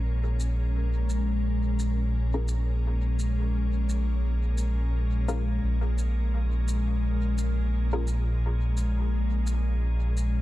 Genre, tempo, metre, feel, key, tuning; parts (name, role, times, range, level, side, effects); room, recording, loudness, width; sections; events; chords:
ambient dub; 86 BPM; 4/4; swing 57% on 16ths; Bb minor; A4 = 440 Hz
soft additive organ-like pad; sustained chords; 0.0-10.4 s; Bb2 to Bb4; -32 LUFS; left 1 dB; ensemble chorus, built-in reverb
soft dub sub bass; bass; 0.0-10.4 s; Bb1; -25 LUFS; equal
shaker; drums; 0.4-10.3 s; -45 LUFS; left 1 dB; dub echo
filtered dub chord stab; stabs; 2.3-8.0 s; Db4 to Bb4; -39 LUFS; left 2 dB; chorus, cassette tape, dub echo
small room ambience; echo-heavy mix; -24 LUFS; side -16 dB against mid
0.0-10.4 A section
filter sweep on synth stab 0.0-10.4
0.0 Bbm7